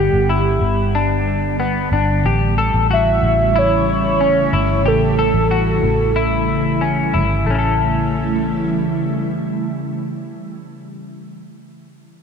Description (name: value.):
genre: dream pop.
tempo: 92 BPM.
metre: 4/4.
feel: straight.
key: A mixolydian.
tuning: A4 = 443 Hz.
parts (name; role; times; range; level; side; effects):
warm velvety synth lead; melody; 0.0-6.8 s; G4 to E5; -18 LUFS; right 2 dB; chorus, tape echo.
ethereal airy pad; sustained chords; 0.0-10.5 s; C#3 to F#5; -21 LUFS; right 1 dB; ensemble chorus, built-in reverb.
semi-hollow electric guitar; arpeggios; 0.0-10.6 s; A3 to A4; -21 LUFS; left 5 dB; analog chorus, tape echo.
vintage muted fingered electric bass; bass; 0.0-10.5 s; G1 to A1; -20 LUFS; equal; none.
room: moderate scoring stage reverb, RT60 1.9 s.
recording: dark, warm production.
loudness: -15 LUFS.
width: side -6 dB against mid.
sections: 0.0-7.5 A section; 7.5-10.1 B section.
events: none.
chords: 0.0 Gmaj7; 2.2 A7.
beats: 0.29 0.94 1.59 | 2.25 2.90 3.55 4.20 | 4.86 5.51 6.16 6.81 | 7.46 8.12 8.77 9.42.